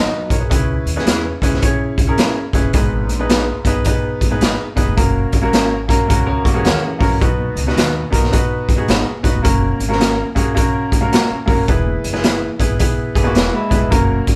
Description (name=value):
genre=uptempo 1960s-style soul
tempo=107 BPM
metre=4/4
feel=swing 64% on 8ths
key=B major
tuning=A4 = 438 Hz
part: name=clear upright piano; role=accompaniment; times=0.0-14.3 s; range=G#2 to F#5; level=-22 LUFS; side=equal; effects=none
part: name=electric guitar through a small old amp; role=riff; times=0.0-0.4, 6.3-7.2, 13.2-13.9 s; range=E3 to A#4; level=-25 LUFS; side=equal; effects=none
part: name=semi-hollow electric guitar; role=stabs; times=0.0-13.5 s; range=A#3 to B4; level=-26 LUFS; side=equal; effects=none
part: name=upright bass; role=bass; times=0.0-14.4 s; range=E1 to F#2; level=-25 LUFS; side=equal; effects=none
part: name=raw garage drum kit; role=drums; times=0.3-14.4 s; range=hi-hat, kick drum, snare drum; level=-19 LUFS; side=equal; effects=none
part: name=congas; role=percussion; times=7.2-14.3 s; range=none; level=-36 LUFS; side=equal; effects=none
room=light reverb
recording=band playing live in one room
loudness=-16 LUFS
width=mono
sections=0.0-14.4 A section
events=upright piano fill 6.4-7.2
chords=0.0 B; 0.5 C#m7; 2.7 G#m; 5.0 F#; 7.2 B; 9.4 F#; 11.7 E